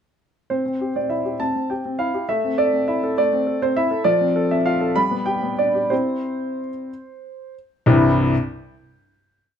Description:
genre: classical-period piano sonatina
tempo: 60-68 BPM (dotted quarters)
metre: 6/8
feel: rubato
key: C major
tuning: A4 = 440 Hz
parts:
  - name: clear grand piano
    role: solo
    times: 0.5-8.3 s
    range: C2 to B5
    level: -18 LUFS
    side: equal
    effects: none
room: moderate large studio reverb, RT60 1.1 s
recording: dark, warm production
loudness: -18 LUFS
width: side -8 dB against mid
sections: 0.5-7.9 A section; 7.9-9.6 final chord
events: slowing down 3.2-7.9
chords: 0.5 C; 2.3 Am; 4.1 Dm7/F; 5.0 G; 5.9 C

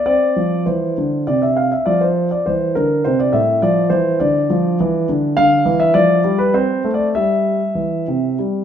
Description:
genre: classical-period piano sonatina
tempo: 101 BPM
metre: 3/4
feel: rubato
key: C major from 5.4 s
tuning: A4 = 440 Hz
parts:
  - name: warm concert grand piano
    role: solo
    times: 0.0-8.6 s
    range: A2 to F5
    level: -14 LUFS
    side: equal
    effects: none
room: wet recital hall reverb, RT60 1.5 s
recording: minimal, uncompressed stereo recording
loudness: -14 LUFS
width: side -9 dB against mid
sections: 0.0-8.6 A section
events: none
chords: 0.1 F5; 1.3 N.C.; 1.9 F; 3.6 Dm; 5.4 G5/D; 6.5 Amadd11; 7.1 C/G

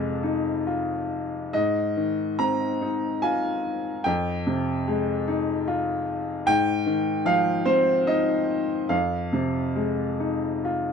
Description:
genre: classical, lyrical solo piano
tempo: 73 BPM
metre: 3/4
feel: uneven beats, rubato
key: unclear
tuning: A4 = 444 Hz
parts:
  - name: bright upright piano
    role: solo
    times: 0.0-10.9 s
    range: F2 to Bb5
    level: -22 LUFS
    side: left 1 dB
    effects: none
room: light reverb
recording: dark, warm production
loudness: -22 LUFS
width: side -6 dB against mid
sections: 0.0-10.9 A section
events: none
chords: 0.0 Fm7; 1.5 Ab6; 4.1 Fm9; 6.5 Ab6; 8.9 Fm7

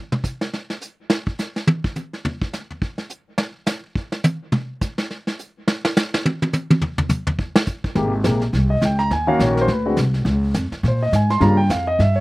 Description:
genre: jazz piano trio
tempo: 210 BPM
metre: 4/4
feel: swing 59% on 8ths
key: Ab major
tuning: A4 = 443 Hz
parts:
  - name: vintage brush drum kit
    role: drums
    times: 0.1-12.2 s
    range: brushed snare drum, hi-hat, kick drum, snare drum, toms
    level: -20 LUFS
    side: equal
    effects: none
  - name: warm concert grand piano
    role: melody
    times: 8.0-12.2 s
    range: C3 to C6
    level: -19 LUFS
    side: equal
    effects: none
  - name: upright bass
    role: bass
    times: 8.0-12.2 s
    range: Ab1 to Bb2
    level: -18 LUFS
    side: equal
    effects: none
room: little or no reverb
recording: recorded outdoors, with no room sound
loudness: -18 LUFS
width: side -20 dB against mid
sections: 0.0-8.0 A section; 8.0-12.2 B section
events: drum solo 0.0-8.0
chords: 0.0 N.C.; 8.0 Abmaj9; 9.1 Ebm7; 9.7 D7(no3); 10.3 Db; 11.4 Gm7b5

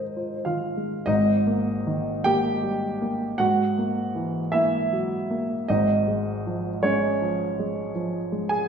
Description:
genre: classical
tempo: 52 BPM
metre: 4/4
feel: rubato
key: unclear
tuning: A4 = 440 Hz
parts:
  - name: dark baby grand piano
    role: accompaniment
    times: 0.0-8.7 s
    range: Ab1 to Ab5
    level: -22 LUFS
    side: right 1 dB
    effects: none
room: wet recital hall reverb, RT60 1.3 s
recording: none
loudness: -22 LUFS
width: side -7 dB against mid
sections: 0.0-1.1 A section; 1.1-8.7 A section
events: none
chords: 0.0 Ab69; 1.1 Absus2; 3.4 Gb9/Ab; 5.7 Db/Ab

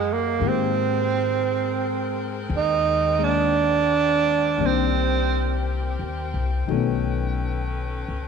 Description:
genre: jazz ballad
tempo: 57 BPM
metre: 4/4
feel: swing 66% on 8ths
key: unclear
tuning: A4 = 438 Hz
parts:
  - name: breathy tenor saxophone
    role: melody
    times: 0.0-5.7 s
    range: G#3 to Eb4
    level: -22 LUFS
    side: right 6 dB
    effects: none
  - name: dark baby grand piano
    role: accompaniment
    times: 0.0-8.3 s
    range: Eb3 to G4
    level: -29 LUFS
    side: left 15 dB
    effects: none
  - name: bright saxophone section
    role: sustained chords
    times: 0.0-8.3 s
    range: Ab3 to G5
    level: -33 LUFS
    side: left 2 dB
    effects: none
  - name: upright bass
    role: bass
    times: 0.0-8.3 s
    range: B1 to Ab2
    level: -26 LUFS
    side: left 2 dB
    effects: none
room: moderate plate reverb, RT60 3.0 s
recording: 1960s-style stereo with parts hard left and right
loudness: -20 LUFS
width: side -6 dB against mid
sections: 0.0-8.3 A section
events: none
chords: 0.4 Abmaj9; 4.6 Cm7; 6.7 B9

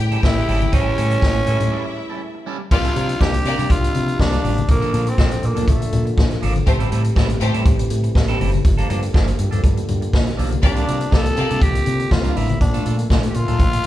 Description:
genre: disco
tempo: 121 BPM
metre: 4/4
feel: straight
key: unclear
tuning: A4 = 440 Hz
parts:
  - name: clear studio violin section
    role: second line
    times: 0.0-3.7, 6.7-7.6, 10.6-11.6 s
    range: A3 to G5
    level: -28 LUFS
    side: left 2 dB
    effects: none
  - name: electric guitar at the edge of break-up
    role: accompaniment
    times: 0.0-13.8 s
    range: F3 to Bb4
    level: -29 LUFS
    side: right 3 dB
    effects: phaser
  - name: dark French horn section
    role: sustained chords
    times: 0.0-13.9 s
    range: Bb2 to A4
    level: -28 LUFS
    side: left 1 dB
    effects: none
  - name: fingered electric bass with an envelope filter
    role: bass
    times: 0.0-13.8 s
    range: F#1 to C3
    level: -21 LUFS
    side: equal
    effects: none
  - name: vintage drum kit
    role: drums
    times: 0.1-13.9 s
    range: crash cymbal, hi-hat, kick drum, snare drum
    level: -19 LUFS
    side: equal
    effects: none
  - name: growling tenor saxophone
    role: melody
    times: 0.2-6.2, 10.6-13.9 s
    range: A3 to A4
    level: -23 LUFS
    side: equal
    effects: none
  - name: congas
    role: percussion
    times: 0.3-13.7 s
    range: none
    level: -29 LUFS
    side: left 5 dB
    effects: none
room: moderate large studio reverb, RT60 1.2 s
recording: band playing live in one room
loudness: -16 LUFS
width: side -14 dB against mid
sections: 0.0-2.7 A section; 2.7-13.9 B section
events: break 1.7-2.7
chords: 0.0 A7; 2.7 C9sus4; 4.7 Bbmaj7; 6.7 Am7; 8.7 Gm9; 10.6 C9sus4; 12.6 Bbmaj7

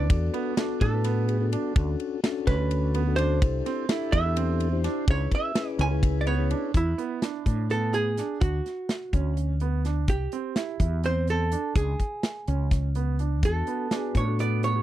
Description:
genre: progressive instrumental, band music in an uneven meter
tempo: 252 BPM (eighths)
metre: 7/8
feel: straight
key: E mixolydian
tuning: A4 = 440 Hz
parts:
  - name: archtop guitar, miked and amplified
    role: melody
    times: 0.0-14.8 s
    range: E4 to G#5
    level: -30 LUFS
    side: right 3 dB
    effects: none
  - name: mellow tonewheel organ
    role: accompaniment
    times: 0.0-6.7, 13.4-14.8 s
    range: B3 to C5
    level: -31 LUFS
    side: left 8 dB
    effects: slow rotary speaker
  - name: clear grand piano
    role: arpeggios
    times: 0.0-14.8 s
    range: B3 to E4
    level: -33 LUFS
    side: right 12 dB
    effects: none
  - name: mellow fretless electric bass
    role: bass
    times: 0.0-14.8 s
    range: C2 to A2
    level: -26 LUFS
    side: equal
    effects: none
  - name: big rock drum kit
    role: drums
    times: 0.1-14.7 s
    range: hi-hat, kick drum, ride cymbal, snare drum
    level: -25 LUFS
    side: equal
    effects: none
room: little or no reverb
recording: dry, close 1970s-style studio recording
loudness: -24 LUFS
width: side -13 dB against mid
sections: 0.0-6.7 A section; 6.7-14.8 B section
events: hollow-body jazz guitar solo 0.0-6.7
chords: 0.1 E7sus4 (rootless); 1.8 Bm7/D; 3.4 C6; 5.1 C#m7; 6.7 E7sus4; 8.4 Bm/D (rootless); 10.1 C6; 11.8 C#5; 13.4 E7sus4

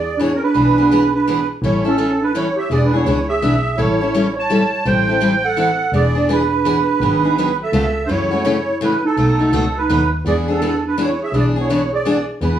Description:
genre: acoustic string swing (jazz manouche)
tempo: 167 BPM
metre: 3/4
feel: swing 62% on 8ths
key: E mixolydian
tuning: A4 = 440 Hz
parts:
  - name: musette accordion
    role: melody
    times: 0.0-12.6 s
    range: A4 to A5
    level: -20 LUFS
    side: right 4 dB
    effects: plate reverb
  - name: breathy clarinet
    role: second line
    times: 0.0-12.3 s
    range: C#4 to C#5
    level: -20 LUFS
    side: right 3 dB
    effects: none
  - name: warm double bass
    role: bass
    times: 0.0-12.6 s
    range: E1 to F#2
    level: -21 LUFS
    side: equal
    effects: none
  - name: picked steel-string acoustic guitar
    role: accompaniment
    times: 0.2-12.6 s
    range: B2 to A4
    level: -20 LUFS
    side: left 3 dB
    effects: none
room: wet studio reverb, RT60 0.7 s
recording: studio reverb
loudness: -14 LUFS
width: side -10 dB against mid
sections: 0.0-12.4 A section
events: none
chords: 0.0 E7; 1.6 A7; 2.7 E7; 3.8 A7; 4.9 Am7; 5.9 E7; 7.0 G#m7; 7.7 C#7alt; 8.1 F#m7; 9.2 B7; 10.2 E7

